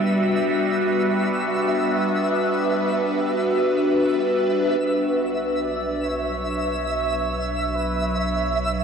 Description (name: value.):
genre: ambient.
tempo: free time.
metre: none.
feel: none.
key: B minor.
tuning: A4 = 440 Hz.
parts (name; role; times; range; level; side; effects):
evolving wavetable pad; sustained chords; 0.0-8.8 s; F#3 to B4; -21 LUFS; equal; phaser, built-in reverb.
mellow tine electric piano; arpeggios; 0.0-4.8 s; none; barely audible; none; none.
twinkling granular texture; texture; 0.0-8.8 s; E5 to E6; -26 LUFS; right 2 dB; built-in reverb.
warm flugelhorn; melody; 4.8-8.7 s; F#4 to D5; -34 LUFS; equal; diffuse ambient delay.
warm sub bass; bass; 4.8-8.8 s; B1; -32 LUFS; equal; none.
room: wet huge ambient reverb, RT60 8.8 s.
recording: worn, warbling old tape, cassette tape, warbly pitch drift.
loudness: -20 LUFS.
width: side -6 dB against mid.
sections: 0.0-4.8 A section; 4.8-8.8 B section.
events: fade-in on ambient pad 4.8-8.8; fade-in on sub bass 4.8-8.8; fade-in on flugelhorn 4.8-8.8.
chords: 0.0 Gmaj7; 4.8 Bmadd9.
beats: free time.